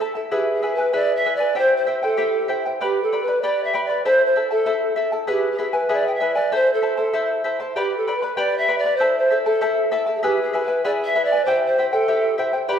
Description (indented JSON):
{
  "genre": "andean folk",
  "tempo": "97 BPM",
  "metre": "2/4",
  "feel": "straight",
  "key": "unclear",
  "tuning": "A4 = 440 Hz",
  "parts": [
    { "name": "charango", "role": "accompaniment", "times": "0.0-12.8 s", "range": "E4 to B5", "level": "-22 LUFS", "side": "left 1 dB", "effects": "none" },
    { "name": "polished pan flute", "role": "melody", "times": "0.3-12.8 s", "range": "G4 to G5", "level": "-20 LUFS", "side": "right 1 dB", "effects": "none" }
  ],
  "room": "wet recital hall reverb, RT60 1.5 s",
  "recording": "recorded in a church or concert hall",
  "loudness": "-18 LUFS",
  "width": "side -8 dB against mid",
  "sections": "0.0-7.8 A section; 7.8-12.8 A section",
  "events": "none",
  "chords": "0.3 E; 1.6 C; 2.8 G; 4.0 Am; 5.3 E; 6.5 Am; 7.8 G; 9.0 Am; 10.2 E; 11.5 C",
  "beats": "| 0.32 0.94 | 1.56 2.18 | 2.80 3.42 | 4.04 4.66 | 5.28 5.90 | 6.52 7.14 | 7.75 8.37 | 8.99 9.61 | 10.22 10.84 | 11.46 12.08 | 12.69"
}